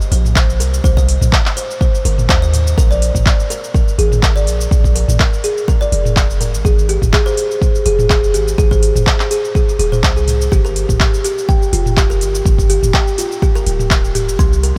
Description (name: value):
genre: afro house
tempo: 124 BPM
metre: 4/4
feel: swing 54% on 16ths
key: G phrygian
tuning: A4 = 440 Hz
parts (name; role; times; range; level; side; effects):
- afro-pop drum kit; drums; 0.0-14.7 s; handclaps, hi-hat, shaker, toms; -22 LUFS; equal; small room ambience
- kalimba; arpeggios; 0.1-14.8 s; F4 to C6; -22 LUFS; equal; sidechain pumping, diffuse ambient delay
- warm 808-style bass; bass; 0.1-14.7 s; D1 to Eb2; -18 LUFS; equal; sidechain pumping
- electronic kick drum; drums; 0.4-14.5 s; none; -16 LUFS; equal; small room ambience
room: light reverb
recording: none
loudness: -14 LUFS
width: mono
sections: 0.0-14.8 A section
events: none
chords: 0.0 Cm7; 2.8 Bb7(no3); 6.6 Ab6; 10.5 G5